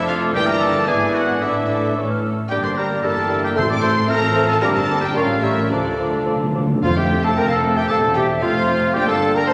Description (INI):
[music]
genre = quick classical-period movement for symphony orchestra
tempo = 113 BPM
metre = 2/4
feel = rubato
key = D minor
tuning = A4 = 437 Hz
[part]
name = clear studio violin section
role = melody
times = 0.0-9.5 s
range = D5 to D6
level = -29 LUFS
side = equal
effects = none
[part]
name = mellow clarinet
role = second line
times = 0.0-9.5 s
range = F4 to C5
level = -32 LUFS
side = equal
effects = none
[part]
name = rich studio violin section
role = second line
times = 0.0-9.5 s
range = C4 to C5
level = -34 LUFS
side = equal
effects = none
[part]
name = silver concert flute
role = second line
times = 0.0-9.5 s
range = C5 to F6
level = -29 LUFS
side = equal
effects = none
[part]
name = warm oboe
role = second line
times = 0.0-9.5 s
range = D4 to D5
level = -26 LUFS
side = equal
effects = none
[part]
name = mellow bassoon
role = accompaniment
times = 0.0-6.7 s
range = E3 to A3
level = -28 LUFS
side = equal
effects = none
[part]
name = rich studio viola section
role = accompaniment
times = 0.0-9.5 s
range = D3 to D4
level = -32 LUFS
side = equal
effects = none
[part]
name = mellow French horn section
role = sustained chords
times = 0.0-9.5 s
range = G3 to G4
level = -28 LUFS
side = equal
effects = none
[part]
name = warm trumpet section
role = stabs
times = 0.0-9.5 s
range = F4 to D5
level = -26 LUFS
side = equal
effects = none
[part]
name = dark studio cello section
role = bass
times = 0.0-9.5 s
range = E2 to D3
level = -33 LUFS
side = equal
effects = none
[part]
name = rich studio double bass section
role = bass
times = 0.0-9.5 s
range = E1 to D2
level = -30 LUFS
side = equal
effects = none
[part]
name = timpani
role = percussion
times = 3.6-7.6 s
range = F2 to D3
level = -26 LUFS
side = equal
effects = none
[sound]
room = wet concert hall reverb, RT60 1.9 s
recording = none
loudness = -18 LUFS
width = mono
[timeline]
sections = 0.0-6.8 A section; 6.8-9.5 B section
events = timpani fill 5.7-6.8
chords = 0.3 Em7b5/G; 0.9 E7/G#; 1.4 Asus4; 2.0 A; 2.5 Gm; 3.0 Edim/G; 3.6 Am; 4.1 F/A; 4.6 Gm; 5.2 A7b9; 5.7 Dm; 6.8 F; 7.9 C/E; 8.4 F; 8.9 Gm